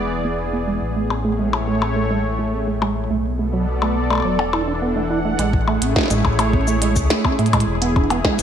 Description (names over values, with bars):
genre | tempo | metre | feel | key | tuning
IDM | 105 BPM | 4/4 | straight | A major | A4 = 440 Hz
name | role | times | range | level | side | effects
warm analog pad | sustained chords | 0.0-8.4 s | A2 to F#5 | -23 LUFS | left 1 dB | chorus
deep acid bass | arpeggios | 0.0-8.4 s | F#3 to E4 | -23 LUFS | right 4 dB | cassette tape, ping-pong delay
dark detuned saw bass | bass | 0.0-8.4 s | E1 to A2 | -23 LUFS | equal | tube saturation
glitchy drum kit | drums | 1.1-8.4 s | cabasa, hi-hat, percussion blips, snare drum | -23 LUFS | left 3 dB | studio reverb, ping-pong delay
electronic kick drum | drums | 5.5-8.4 s | none | -21 LUFS | equal | studio reverb
room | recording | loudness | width
moderate plate reverb, RT60 2.2 s | bright 1980s-style digital production | -17 LUFS | side -8 dB against mid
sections
0.0-5.4 A section; 5.4-8.4 B section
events
filter sweep on acid bass 0.0-5.4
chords
0.0 E7; 0.8 Amaj7; 3.1 Bm7; 4.2 E9sus4; 5.4 Amaj7; 7.7 E7